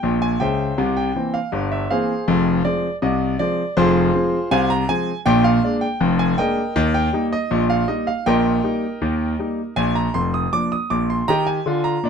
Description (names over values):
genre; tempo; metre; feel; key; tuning
ragtime piano; 80 BPM; 2/4; straight; Eb major; A4 = 440 Hz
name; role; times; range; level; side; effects
clear concert grand piano; solo; 0.0-12.1 s; F1 to Eb6; -17 LUFS; equal; none
room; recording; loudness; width
moderate club reverb, RT60 0.5 s; none; -17 LUFS; side -6 dB against mid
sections
0.0-12.1 A section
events
none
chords
0.0 Eb (rootless); 0.8 C7; 2.3 Fm; 5.3 Bb7; 6.8 Eb/Bb; 9.8 Bb; 11.3 Eb